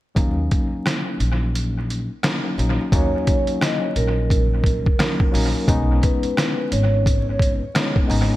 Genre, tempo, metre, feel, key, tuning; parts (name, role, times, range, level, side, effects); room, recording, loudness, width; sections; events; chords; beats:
hip hop, boom-bap hip-hop; 87 BPM; 4/4; swing 62% on 16ths; Eb minor; A4 = 440 Hz
tine electric piano; accompaniment; 0.2-8.4 s; Gb3 to Eb4; -25 LUFS; left 2 dB; medium tremolo, cassette tape, high-pass filter, low-pass filter
upright bass; bass; 0.2-8.3 s; G#1 to Eb2; -21 LUFS; equal
trip hop sampler-style drum kit; drums; 0.2-8.3 s; hi-hat, kick drum, rim click, snare drum; -21 LUFS; equal; analog delay
vibraphone with soft mallets; melody; 2.9-7.2 s; Bb4 to Eb5; -26 LUFS; right 2 dB; high-pass filter, low-pass filter, analog delay
digital ambience; echo-heavy mix, vinyl crackle; -18 LUFS; side -16 dB against mid
0.2-2.9 A section; 2.9-8.4 B section
kick muted 1.5-2.9
0.2 Ebm7; 5.7 B69
| 0.16 0.85 1.54 2.23 | 2.92 3.61 4.30 4.99 | 5.68 6.37 7.06 7.75